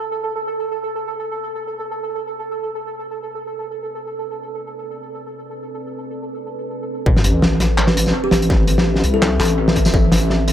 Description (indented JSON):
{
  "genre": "half-time drum and bass",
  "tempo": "free time",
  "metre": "none",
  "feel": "none",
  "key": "A minor",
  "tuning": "A4 = 439 Hz",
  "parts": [
    { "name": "deep dark ambient pad", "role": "sustained chords", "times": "0.1-10.5 s", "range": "C4 to E5", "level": "-27 LUFS", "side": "right 1 dB", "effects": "chorus, built-in reverb, vintage 12-bit sampler grit, sidechain pumping" },
    { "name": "pulsing gated texture", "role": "texture", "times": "0.0-7.1 s", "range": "A4", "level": "-26 LUFS", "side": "right 3 dB", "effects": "chorus, built-in reverb" },
    { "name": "deep soft wobble bass", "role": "bass", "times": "7.1-10.5 s", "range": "A1 to C2", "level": "-18 LUFS", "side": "equal", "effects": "chorus" },
    { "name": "electronic kick drum", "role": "drums", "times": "7.1-10.0 s", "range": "none", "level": "-17 LUFS", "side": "equal", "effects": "distortion" },
    { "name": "sub drop", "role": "sound effects", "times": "7.1-8.5 s", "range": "none", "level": "-25 LUFS", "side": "equal", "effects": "none" },
    { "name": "crunchy breakbeat drum kit", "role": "drums", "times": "7.2-10.5 s", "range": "handclaps, hi-hat, snare drum, tambourine", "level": "-18 LUFS", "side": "equal", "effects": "analog delay" },
    { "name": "kalimba", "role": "melody", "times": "8.2-9.8 s", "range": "G4 to A4", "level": "-23 LUFS", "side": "left 3 dB", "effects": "dub echo" }
  ],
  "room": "light reverb, studio reverb",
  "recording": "echo-heavy mix",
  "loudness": "-17 LUFS",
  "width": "side -11 dB against mid",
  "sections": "0.0-7.1 A section; 7.1-10.5 B section",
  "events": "filter sweep on ambient pad 0.0-7.1; drop 7.1-10.5; impact 7.1-8.5",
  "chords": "0.0 Amadd9"
}